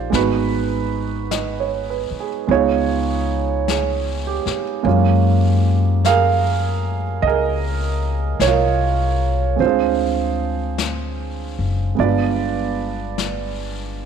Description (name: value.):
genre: jazz ballad.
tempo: 51 BPM.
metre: 4/4.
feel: swing 68% on 8ths.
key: unclear.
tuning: A4 = 440 Hz.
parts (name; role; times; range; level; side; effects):
warm concert grand piano; accompaniment; 0.0-14.1 s; G3 to F5; -20 LUFS; right 10 dB; none.
upright bass; bass; 0.0-14.1 s; Gb1 to Gb2; -21 LUFS; left 3 dB; none.
jazz brush drum kit; drums; 0.1-14.1 s; brushed snare drum, hi-hat, snare drum; -30 LUFS; left 10 dB; none.
room: light reverb, small room ambience.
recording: 1960s-style stereo with parts hard left and right.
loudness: -17 LUFS.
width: side -7 dB against mid.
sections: 0.0-14.1 A section.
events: none.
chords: 0.1 Abm7; 2.5 Db9; 4.9 Gbmaj9; 9.6 Dm7b5; 12.0 G7b9.